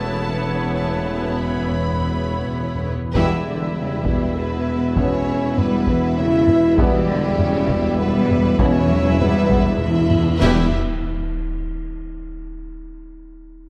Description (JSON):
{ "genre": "cinematic, epic orchestral film score", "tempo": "99 BPM", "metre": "3/4", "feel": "straight", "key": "E dorian", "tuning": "A4 = 441 Hz", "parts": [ { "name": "rich symphonic violin section", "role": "melody", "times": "0.0-10.8 s", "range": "G4 to B5", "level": "-33 LUFS", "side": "equal", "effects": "none" }, { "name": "dark chamber violin section", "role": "second line", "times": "0.0-10.8 s", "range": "B4 to E5", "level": "-33 LUFS", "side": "equal", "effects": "none" }, { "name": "clear symphonic viola section", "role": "accompaniment", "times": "0.0-10.8 s", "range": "B3 to G4", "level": "-33 LUFS", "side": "equal", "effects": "none" }, { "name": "clear trombone section", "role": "sustained chords", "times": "0.0-10.7 s", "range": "B2 to C#4", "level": "-32 LUFS", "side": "equal", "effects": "none" }, { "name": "clear woodwind section", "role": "sustained chords", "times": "0.0-2.9 s", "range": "B3 to C#5", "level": "-33 LUFS", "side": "equal", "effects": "none" }, { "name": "dark French horn section", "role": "sustained chords", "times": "0.0-10.7 s", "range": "G3 to E4", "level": "-24 LUFS", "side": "equal", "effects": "none" }, { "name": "mellow tuba", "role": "bass", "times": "0.0-10.7 s", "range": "E1", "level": "-28 LUFS", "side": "equal", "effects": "none" }, { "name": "rich symphonic cello section", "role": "bass", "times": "0.0-10.8 s", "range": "E2 to G3", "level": "-27 LUFS", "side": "equal", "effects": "none" }, { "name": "rich symphonic double bass section", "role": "bass", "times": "0.0-10.7 s", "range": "E1 to E2", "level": "-29 LUFS", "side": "equal", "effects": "none" }, { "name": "timpani", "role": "percussion", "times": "0.0-4.0, 6.8-10.7 s", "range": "E2", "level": "-31 LUFS", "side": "equal", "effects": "none" }, { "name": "taiko ensemble", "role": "drums", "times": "3.1-10.4 s", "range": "none", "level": "-25 LUFS", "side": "equal", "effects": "none" }, { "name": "cymbal swell, clash cymbals and concert bass drum", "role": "percussion", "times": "6.8-11.6 s", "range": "none", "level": "-30 LUFS", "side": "equal", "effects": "none" } ], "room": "moderate scoring stage reverb, RT60 1.9 s", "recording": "dark, warm production", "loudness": "-19 LUFS", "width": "mono", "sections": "0.0-3.2 A section; 3.2-10.4 B section; 10.4-12.2 C section", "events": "timpani fill 0.0-3.2, 6.8-10.4; band accent 3.2-3.8, 10.4-11.0", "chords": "0.0 Aadd9/E; 3.2 Em" }